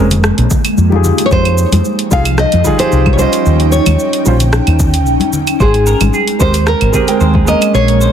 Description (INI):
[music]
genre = sunset chillout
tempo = 112 BPM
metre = 4/4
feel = straight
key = Ab major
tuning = A4 = 440 Hz
[part]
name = dark baby grand piano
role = accompaniment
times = 0.0-8.1 s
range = G3 to G5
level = -17 LUFS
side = moving between left 7 dB and right 7 dB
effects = auto-pan, digital delay
[part]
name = ethereal airy pad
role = sustained chords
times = 0.0-8.1 s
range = F3 to G5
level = -18 LUFS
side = right 1 dB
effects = ensemble chorus, built-in reverb, phaser
[part]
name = woody fretless electric bass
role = bass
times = 0.0-8.1 s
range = F1 to F2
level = -12 LUFS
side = equal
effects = none
[part]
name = smooth R&B drum kit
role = drums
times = 0.1-8.1 s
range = claves, hi-hat, rim click, shaker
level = -19 LUFS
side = right 2 dB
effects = none
[part]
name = congas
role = percussion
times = 0.1-7.4 s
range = none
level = -21 LUFS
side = left 3 dB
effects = none
[part]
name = electronic kick drum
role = drums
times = 0.5-7.5 s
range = none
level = -15 LUFS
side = equal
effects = none
[part]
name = nylon-string guitar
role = melody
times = 1.3-8.1 s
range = Ab4 to F5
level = -16 LUFS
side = left 2 dB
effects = vintage 12-bit sampler grit, digital delay
[part]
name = semi-hollow electric guitar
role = arpeggios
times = 5.6-8.1 s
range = Ab4 to C5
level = -20 LUFS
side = right 3 dB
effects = lush chorus, digital delay
[sound]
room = moderate plate reverb, RT60 2.1 s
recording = dense, heavily limited modern master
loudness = -9 LUFS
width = side -9 dB against mid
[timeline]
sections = 0.0-8.1 A section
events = none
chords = 0.0 Bb7(no3); 1.0 Fm9; 3.5 Eb9; 5.6 Abmaj9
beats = 0.24 0.78 | 1.31 1.85 2.39 2.92 | 3.46 3.99 4.53 5.07 | 5.60 6.14 6.67 7.21 | 7.74